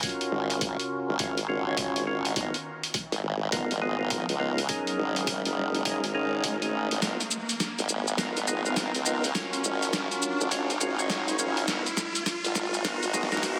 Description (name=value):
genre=glitch hop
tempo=103 BPM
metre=4/4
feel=swing 63% on 16ths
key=G# dorian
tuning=A4 = 441 Hz
part: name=percussive tonewheel organ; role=stabs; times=0.0-13.6 s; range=B3 to C#5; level=-33 LUFS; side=equal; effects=overdrive, slow rotary speaker, sidechain pumping, low-pass filter, tape echo
part: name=boom bap sampler-style drum kit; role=drums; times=0.0-13.6 s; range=hi-hat, shaker, snare drum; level=-32 LUFS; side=equal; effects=none
part: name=electronic kick drum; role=drums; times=0.0-13.6 s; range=none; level=-42 LUFS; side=equal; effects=high-pass filter on kick, high-pass filter on room
part: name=riser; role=sound effects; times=0.8-13.6 s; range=none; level=-38 LUFS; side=equal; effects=none
part: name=formant-sweep wobble bass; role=bass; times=0.3-13.6 s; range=F#1 to C#2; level=-33 LUFS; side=equal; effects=chorus, high-pass filter
room=wet lush hall reverb, RT60 2.0 s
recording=dense, heavily limited modern master, high-pass filter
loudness=-28 LUFS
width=mono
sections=0.0-13.6 A section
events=build-up 0.0-13.6; filter sweep on tonewheel organ 0.0-13.6; riser 0.8-13.6; drum fill 7.0-13.6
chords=0.0 G#13sus4; 2.4 G#m69; 4.7 F#6; 7.0 G#m69; 9.4 G#13sus4; 11.7 G#m69